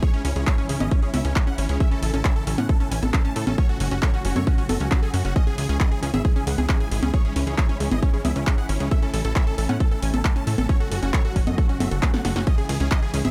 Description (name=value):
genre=uplifting trance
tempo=135 BPM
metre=4/4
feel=straight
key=C# minor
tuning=A4 = 440 Hz
part: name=big supersaw lead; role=melody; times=0.0-13.3 s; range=C#4 to A5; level=-35 LUFS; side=equal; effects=phaser, sidechain pumping, delay
part: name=dark symphonic string section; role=sustained chords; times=0.0-13.3 s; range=G#2 to F#4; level=-36 LUFS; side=equal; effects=sidechain pumping
part: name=analog pluck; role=arpeggios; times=0.0-13.3 s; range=C#4 to A4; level=-34 LUFS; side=equal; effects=chorus, sidechain pumping, delay
part: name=electronic kick drum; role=drums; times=0.0-13.0 s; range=none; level=-22 LUFS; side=equal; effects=none
part: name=punchy analog drum machine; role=drums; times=0.0-13.3 s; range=congas, handclaps, hi-hat, ride cymbal, snare drum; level=-30 LUFS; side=equal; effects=sidechain pumping on hats, sidechain pumping on perc, sidechain pumping on cymbals
part: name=plucky analog bass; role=bass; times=0.2-13.3 s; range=F#1 to A2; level=-26 LUFS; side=equal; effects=sidechain pumping
room=little or no reverb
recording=none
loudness=-22 LUFS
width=mono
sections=0.0-13.3 A section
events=drum fill 12.0-12.5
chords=0.0 C#m; 1.8 A; 3.6 F#m; 5.4 C#m; 8.9 A; 10.7 F#m; 12.5 C#m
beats=| 0.03 0.47 0.92 1.36 | 1.80 2.25 2.69 3.14 | 3.58 4.03 4.47 4.92 | 5.36 5.80 6.25 6.69 | 7.14 7.58 8.03 8.47 | 8.91 9.36 9.80 10.25 | 10.69 11.14 11.58 12.03 | 12.47 12.91